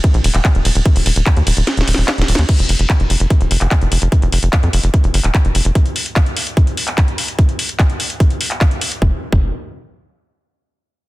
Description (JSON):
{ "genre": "psychedelic trance", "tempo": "147 BPM", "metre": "4/4", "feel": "straight", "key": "unclear", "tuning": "A4 = 439 Hz", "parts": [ { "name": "electronic kick drum", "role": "drums", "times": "0.0-9.4 s", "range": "none", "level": "-15 LUFS", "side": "equal", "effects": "none" }, { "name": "techno drum kit", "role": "drums", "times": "0.0-9.0 s", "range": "crash cymbal, handclaps, hi-hat, ride cymbal, snare drum", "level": "-19 LUFS", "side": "equal", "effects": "none" }, { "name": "tight sequencer bass", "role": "bass", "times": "0.1-5.7, 9.0-9.5 s", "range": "Eb1 to F2", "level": "-14 LUFS", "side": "equal", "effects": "none" } ], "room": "little or no reverb", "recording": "dense, heavily limited modern master", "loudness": "-13 LUFS", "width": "side -19 dB against mid", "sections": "0.0-2.5 A section; 2.5-9.0 B section; 9.0-10.7 C section", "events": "drop 0.0-2.5; kick drops out 1.7-2.5; drum fill 1.7-2.5", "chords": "none" }